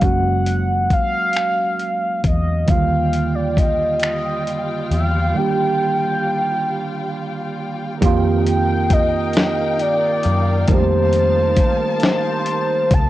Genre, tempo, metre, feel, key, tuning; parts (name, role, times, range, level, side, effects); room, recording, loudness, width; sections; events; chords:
slow six-eight R&B; 45 BPM (dotted quarters); 6/8; straight; A4 = 439 Hz
mellow horn-like synth lead; melody; 0.0-13.1 s; C5 to A5; -20 LUFS; left 1 dB; chorus, cassette tape
tine electric piano; accompaniment; 0.0-13.1 s; D3 to G4; -22 LUFS; right 5 dB; overdrive, wide subtle chorus, cassette tape
vintage muted fingered electric bass; bass; 0.0-13.1 s; F#1 to G2; -21 LUFS; left 1 dB
dusty soul sampler-style drum kit; drums; 0.0-13.1 s; finger snaps, hi-hat, kick drum, snare drum; -18 LUFS; left 1 dB
dark studio string section; sustained chords; 2.7-13.1 s; G3 to A5; -28 LUFS; left 2 dB; cassette tape
light reverb, digital ambience; home recording on cassette; -16 LUFS; side -15 dB against mid
0.0-8.0 A section; 8.0-13.1 B section
break 5.4-8.0
0.0 F#maj9; 2.7 Ebmaj9; 8.0 F9sus4